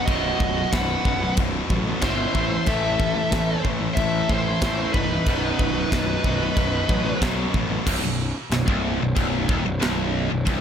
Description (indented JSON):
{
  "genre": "heavy metal",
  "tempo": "92 BPM",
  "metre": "4/4",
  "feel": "straight",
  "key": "unclear",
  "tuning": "A4 = 441 Hz",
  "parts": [
    { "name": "high-gain lead guitar", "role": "melody", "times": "0.0-7.2 s", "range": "B4 to F#5", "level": "-27 LUFS", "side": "left 2 dB", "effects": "distortion, ping-pong delay" },
    { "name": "high-gain lead guitar", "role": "second line", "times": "0.0-7.2 s", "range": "D#4 to B4", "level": "-31 LUFS", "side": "right 4 dB", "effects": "distortion" },
    { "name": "heavy high-gain guitar", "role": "riff", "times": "0.0-10.6 s", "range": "B1 to A3", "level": "-28 LUFS", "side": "equal", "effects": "distortion" },
    { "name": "high-gain distorted guitar", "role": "riff", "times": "0.0-10.6 s", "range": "B1 to A3", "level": "-27 LUFS", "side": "left 1 dB", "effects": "distortion" },
    { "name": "fuzz picked electric bass", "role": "bass", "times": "0.1-10.6 s", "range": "B0 to B1", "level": "-27 LUFS", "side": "equal", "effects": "overdrive" },
    { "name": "tight metal drum kit", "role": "drums", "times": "0.1-10.6 s", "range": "china cymbal, crash cymbal, kick drum, snare drum", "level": "-26 LUFS", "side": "equal", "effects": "none" }
  ],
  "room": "little or no reverb",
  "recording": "none",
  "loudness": "-20 LUFS",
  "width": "side -8 dB against mid",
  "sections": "0.0-7.9 A section; 7.9-10.6 B section",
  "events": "none",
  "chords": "0.0 B; 2.3 Am; 5.3 B"
}